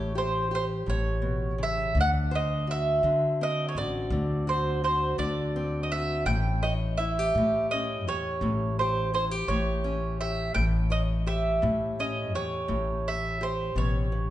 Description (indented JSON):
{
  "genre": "acoustic country blues, solo or duo",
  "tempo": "56 BPM (dotted quarters)",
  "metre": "12/8",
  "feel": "straight",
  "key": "A mixolydian",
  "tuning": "A4 = 440 Hz",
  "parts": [
    { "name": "mandolin", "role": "melody", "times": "0.0-14.3 s", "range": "C5 to G5", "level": "-28 LUFS", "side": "right 2 dB", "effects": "none" },
    { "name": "fingerpicked steel-string acoustic guitar", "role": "accompaniment", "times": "0.0-14.3 s", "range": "A2 to C#5", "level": "-33 LUFS", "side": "left 2 dB", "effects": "none" },
    { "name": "upright bass", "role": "bass", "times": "0.0-14.3 s", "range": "A1 to D3", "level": "-29 LUFS", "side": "left 1 dB", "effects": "none" }
  ],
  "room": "moderate recital hall reverb, RT60 1.8 s",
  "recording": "recorded in a church or concert hall, nothing above 10.5 kHz",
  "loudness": "-25 LUFS",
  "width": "side -13 dB against mid",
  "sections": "0.0-14.3 A section",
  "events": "none",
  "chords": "0.0 A7; 2.0 D7; 6.3 A7"
}